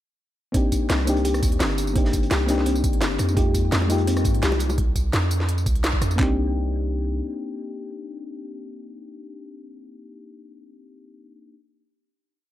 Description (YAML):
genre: liquid drum and bass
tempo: 170 BPM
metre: 4/4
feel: straight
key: C minor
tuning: A4 = 442 Hz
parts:
  - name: mellow FM electric piano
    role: accompaniment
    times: 0.5-11.5 s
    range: Ab3 to G4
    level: -27 LUFS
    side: left 4 dB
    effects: chorus, dub echo
  - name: thumb-piano-like synth pluck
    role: arpeggios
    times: 0.5-6.4 s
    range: C4 to G4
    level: -31 LUFS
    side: right 2 dB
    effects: chorus, dub echo
  - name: breakbeat sampler-style drum kit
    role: drums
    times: 0.5-6.3 s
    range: handclaps, kick drum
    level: -23 LUFS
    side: equal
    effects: none
  - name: crunchy breakbeat drum kit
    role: drums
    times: 0.5-4.7 s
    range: hi-hat, snare drum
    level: -35 LUFS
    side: right 1 dB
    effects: high-pass filter on hats, high-pass filter on snare, high-pass filter on room
  - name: garage drum kit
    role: drums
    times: 0.5-6.2 s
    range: hi-hat, rim click, snare drum, tambourine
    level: -27 LUFS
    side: equal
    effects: none
  - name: long sustained 808-style bass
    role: bass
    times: 0.9-7.2 s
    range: G1 to Ab2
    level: -24 LUFS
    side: equal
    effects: none
  - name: bongos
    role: percussion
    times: 3.8-4.8 s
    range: none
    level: -34 LUFS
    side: right 3 dB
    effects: none
room: small room ambience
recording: none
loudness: -20 LUFS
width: side -13 dB against mid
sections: 0.5-6.2 drop; 6.2-9.0 final chord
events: drop 0.5-6.2; band accent 5.8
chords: 0.5 Cm9; 3.4 Fm11; 6.2 Cm9